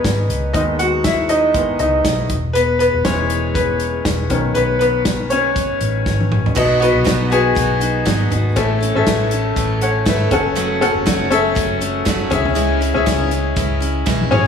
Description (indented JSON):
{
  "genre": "piano-driven pop",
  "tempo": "120 BPM",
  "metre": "4/4",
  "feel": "swing 56% on 16ths",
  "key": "unclear",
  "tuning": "A4 = 438 Hz",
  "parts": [
    { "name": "bright upright piano", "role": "accompaniment", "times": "0.0-14.5 s", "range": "A2 to F#5", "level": "-17 LUFS", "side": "left 2 dB", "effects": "none" },
    { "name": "vintage muted fingered electric bass", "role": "bass", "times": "0.0-14.5 s", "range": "E1 to D#2", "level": "-22 LUFS", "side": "equal", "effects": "none" },
    { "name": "natural country drum kit", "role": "drums", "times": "0.0-14.4 s", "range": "crash cymbal, hi-hat, kick drum, snare drum, toms", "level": "-21 LUFS", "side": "equal", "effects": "none" },
    { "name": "picked steel-string acoustic guitar", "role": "riff", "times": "6.5-14.5 s", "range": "F#2 to A4", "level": "-23 LUFS", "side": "right 8 dB", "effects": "none" }
  ],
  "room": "moderate recital hall reverb, RT60 1.4 s, small room ambience",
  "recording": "none",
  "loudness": "-14 LUFS",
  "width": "side -7 dB against mid",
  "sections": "0.0-6.6 A section; 6.6-14.5 B section",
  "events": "upright piano solo 0.0-6.6; drum fill 6.1-6.6, 14.1-14.5",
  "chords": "0.0 E; 0.5 G#m/D#; 2.3 E; 4.3 Badd9; 6.6 B; 8.6 A; 10.3 F#m; 12.3 C#m",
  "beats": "0.05 | 0.55 1.05 1.55 2.05 | 2.55 3.05 3.56 4.06 | 4.56 5.06 5.56 6.06 | 6.56 7.06 7.56 8.06 | 8.56 9.07 9.57 10.07 | 10.57 11.07 11.57 12.07 | 12.57 13.07 13.57 14.07"
}